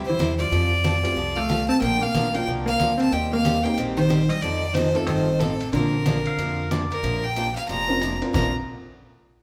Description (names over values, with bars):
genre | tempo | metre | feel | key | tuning
country, western swing | 184 BPM | 4/4 | swing 62% on 8ths | Bb major | A4 = 439 Hz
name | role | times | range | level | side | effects
clear fiddle | melody | 0.0-8.5 s | A4 to Bb5 | -28 LUFS | equal | none
picked steel-string acoustic guitar | accompaniment | 0.0-8.5 s | Bb2 to C5 | -33 LUFS | equal | none
tack piano | accompaniment | 0.0-8.5 s | E3 to Bb4 | -33 LUFS | equal | none
upright bass | bass | 0.0-8.5 s | F1 to F2 | -31 LUFS | equal | none
vintage hollow-body jazz guitar | second line | 0.1-6.7 s | C3 to C4 | -27 LUFS | equal | none
trip hop sampler-style drum kit | drums | 0.2-8.4 s | crash cymbal, hi-hat, kick drum, ride cymbal, rim click, snare drum | -33 LUFS | equal | none
pedal steel guitar | second line | 6.3-7.0 s | D5 to F5 | -34 LUFS | equal | none
room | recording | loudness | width
wet large studio reverb, RT60 1.4 s | band playing live in one room | -23 LUFS | mono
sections
0.0-7.0 A section; 7.0-8.3 B section; 8.3-9.4 C section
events
none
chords
0.0 C; 0.5 Fadd9; 1.8 Bb; 3.1 Eb6; 4.4 F7; 5.7 Bbadd9